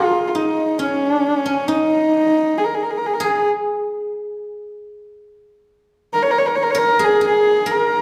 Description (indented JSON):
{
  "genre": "mongolian traditional, Mongolian folk",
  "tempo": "67 BPM",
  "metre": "4/4",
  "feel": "straight",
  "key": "Bb yu mode",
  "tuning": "A4 = 443 Hz",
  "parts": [
    { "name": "rich horsehead fiddle", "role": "melody", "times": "0.0-8.0 s", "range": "Db4 to Db5", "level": "-19 LUFS", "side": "equal", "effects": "none" },
    { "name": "guzheng", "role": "second line", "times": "0.0-8.0 s", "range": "Db4 to Bb4", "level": "-24 LUFS", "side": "equal", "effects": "none" }
  ],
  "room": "wet recital hall reverb, RT60 1.6 s",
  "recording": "none",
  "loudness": "-18 LUFS",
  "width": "mono",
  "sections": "0.0-8.0 A section",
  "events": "none",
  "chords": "none"
}